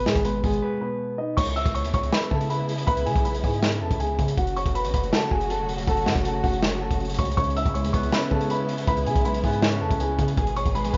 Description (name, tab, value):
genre	hip hop, trap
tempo	160 BPM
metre	4/4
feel	half-time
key	C# minor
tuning	A4 = 439 Hz
part	dark grand piano	melody	0.0-11.0 s	G#3 to E6	-29 LUFS	equal	low-pass filter, plate reverb, delay
part	mellow electric guitar	accompaniment	0.0-1.4, 7.4-11.0 s	B2 to B4	-33 LUFS	equal	low-pass filter, plate reverb
part	long sustained 808-style bass	bass	0.0-11.0 s	E1 to C#3	-30 LUFS	equal	none
part	crunchy breakbeat drum kit	drums	0.1-11.0 s	crash cymbal, hi-hat, kick drum, snare drum	-28 LUFS	equal	none
part	warm symphonic string section	sustained chords	1.4-11.0 s	C#3 to G#4	-34 LUFS	equal	none
room	light reverb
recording	rough home demo mix, nothing above 7.5 kHz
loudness	-24 LUFS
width	mono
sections	0.0-1.4 A section; 1.4-11.0 B section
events	break 0.6-1.4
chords	0.0 G#m; 1.4 C#m7; 4.4 F#m; 7.4 C#m7; 10.4 G#m